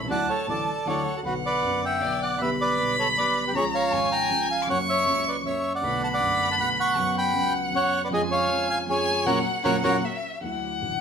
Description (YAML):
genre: tango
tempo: 157 BPM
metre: 3/4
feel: rubato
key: B minor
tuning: A4 = 440 Hz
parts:
  - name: warm violin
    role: second line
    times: 0.0-11.0 s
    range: D5 to D6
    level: -27 LUFS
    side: left 1 dB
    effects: none
  - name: dark concert grand piano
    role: accompaniment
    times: 0.0-11.0 s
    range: F#1 to G4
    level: -30 LUFS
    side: equal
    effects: none
  - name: bandoneon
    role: melody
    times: 0.1-10.0 s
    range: F#4 to C#6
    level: -24 LUFS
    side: right 1 dB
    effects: none
  - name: dark studio string section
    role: stabs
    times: 0.1-1.0, 5.8-11.0 s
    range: E#2 to A4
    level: -36 LUFS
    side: right 2 dB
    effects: none
room: moderate large studio reverb, RT60 1.1 s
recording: band playing live in one room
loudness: -22 LUFS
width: side -7 dB against mid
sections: 0.0-1.2 A section; 1.2-10.4 B section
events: band accent 9.3-10.4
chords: 0.1 Dadd9; 1.2 Bm; 2.4 G/B; 3.5 C#; 4.7 F#; 5.8 Bm7; 7.0 F#sus4; 8.1 C#/E#; 9.3 F#; 10.0 N.C.; 10.4 Dadd9